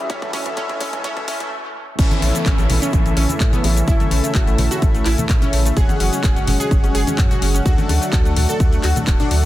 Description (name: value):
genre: progressive house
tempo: 127 BPM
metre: 4/4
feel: straight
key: A major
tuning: A4 = 443 Hz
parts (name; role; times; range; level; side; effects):
- warm analog pad; sustained chords; 0.0-9.5 s; C#3 to F#4; -28 LUFS; right 1 dB; chorus, sidechain pumping
- analog pluck; arpeggios; 0.0-9.4 s; E3 to A4; -25 LUFS; equal; chorus, sidechain pumping, dub echo
- soft supersaw; stabs; 0.0-9.5 s; C#4 to F#5; -25 LUFS; left 2 dB; vintage 12-bit sampler grit, sidechain pumping, dub echo
- saturated sub bass; bass; 0.0-9.5 s; D1 to A2; -19 LUFS; equal; sidechain pumping, high-pass filter
- riser and downlifter; sound effects; 0.0-5.8 s; none; -31 LUFS; right 1 dB; none
- electronic kick drum; drums; 0.1-9.2 s; none; -17 LUFS; equal; none
- house drum kit; drums; 0.1-9.4 s; crash cymbal, handclaps, hi-hat, shaker; -26 LUFS; left 2 dB; sidechain pumping on hats, sidechain pumping on cymbals, sidechain pumping on perc, soft clipping on snare
- congas and bongos; percussion; 2.1-9.3 s; none; -27 LUFS; left 1 dB; sidechain pumping on perc
room: little or no reverb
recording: dense, heavily limited modern master, high-pass filter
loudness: -15 LUFS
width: side -15 dB against mid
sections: 0.0-2.0 A section; 2.0-9.5 B section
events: build-up 0.0-2.0; drum fill 0.0-1.5; riser 0.0-1.5; stop 1.5-2.0; drop 2.0-9.5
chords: 0.1 D; 2.0 A; 5.8 F#sus2; 7.7 D